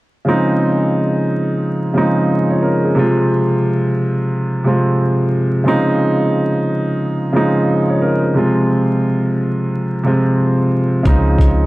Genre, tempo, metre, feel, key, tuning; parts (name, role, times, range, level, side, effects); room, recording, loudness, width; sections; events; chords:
hip hop, boom-bap hip-hop; 89 BPM; 4/4; swing 62% on 16ths; Db major; A4 = 442 Hz
dark baby grand piano; accompaniment; 0.2-11.7 s; C3 to Db5; -14 LUFS; equal; cassette tape, high-pass filter, low-pass filter
upright bass; bass; 11.1-11.7 s; Db2; -15 LUFS; equal
boom bap sampler-style drum kit; drums; 11.1-11.6 s; hi-hat, kick drum; -13 LUFS; equal
light reverb, small room ambience; dark, warm production, vinyl crackle; -13 LUFS; side -19 dB against mid
0.3-11.1 A section
0.3 Dbmaj7; 3.0 Fm/C; 5.7 Dbmaj7; 8.4 Fm/C; 11.1 Dbmaj7